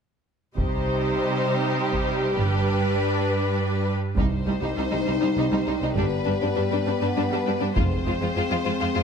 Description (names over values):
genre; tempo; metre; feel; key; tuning
cinematic, epic orchestral film score; 67 BPM (dotted quarters); 6/8; straight; unclear; A4 = 439 Hz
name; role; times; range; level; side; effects
warm symphonic violin section; second line; 0.6-9.0 s; D4 to C5; -28 LUFS; left 2 dB; none
rich symphonic viola section; accompaniment; 0.6-9.0 s; G3 to Eb4; -29 LUFS; right 2 dB; none
rich symphonic cello section; bass; 0.6-9.0 s; C2 to C3; -28 LUFS; right 3 dB; none
rich symphonic double bass section; bass; 0.6-7.9 s; F1 to C2; -28 LUFS; right 2 dB; none
taiko ensemble; drums; 0.6-8.9 s; none; -28 LUFS; equal; none
clear studio violin section; melody; 4.2-9.0 s; B4 to C5; -32 LUFS; left 4 dB; none
mellow French horn section; sustained chords; 4.2-9.0 s; G3 to Eb4; -27 LUFS; left 4 dB; none
room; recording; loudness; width
light reverb; none; -21 LUFS; side -6 dB against mid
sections
0.6-4.2 A section; 4.2-9.0 B section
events
build-up 4.2-9.0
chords
0.6 Cm; 2.4 G; 4.2 Cm; 6.0 G; 7.8 Fm